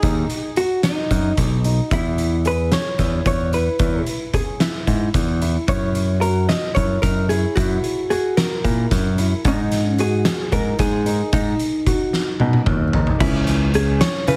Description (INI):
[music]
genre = progressive instrumental, band music in an uneven meter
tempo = 223 BPM (eighths)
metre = 7/8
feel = straight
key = unclear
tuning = A4 = 440 Hz
[part]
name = vintage hollow-body jazz guitar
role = melody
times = 0.0-14.4 s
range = Eb4 to Eb5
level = -26 LUFS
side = equal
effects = tape echo
[part]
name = dark concert grand piano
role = arpeggios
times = 0.0-14.4 s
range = Db4 to G#4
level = -29 LUFS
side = equal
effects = tape echo
[part]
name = picked electric bass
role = bass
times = 0.0-14.4 s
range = Cb2 to Db3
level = -22 LUFS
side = equal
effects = none
[part]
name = oversized low-tuned drum kit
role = drums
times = 0.0-14.4 s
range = crash cymbal, hi-hat, kick drum, snare drum, toms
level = -24 LUFS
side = equal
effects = none
[sound]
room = light reverb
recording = heavily compressed radio sound, multiband compression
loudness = -19 LUFS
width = mono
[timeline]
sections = 0.0-13.2 A section; 13.2-14.4 B section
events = drum fill 12.1-13.2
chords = 0.0 Ebm; 1.9 E6; 5.7 Gb7; 9.4 Ab7(no3); 13.2 Dbm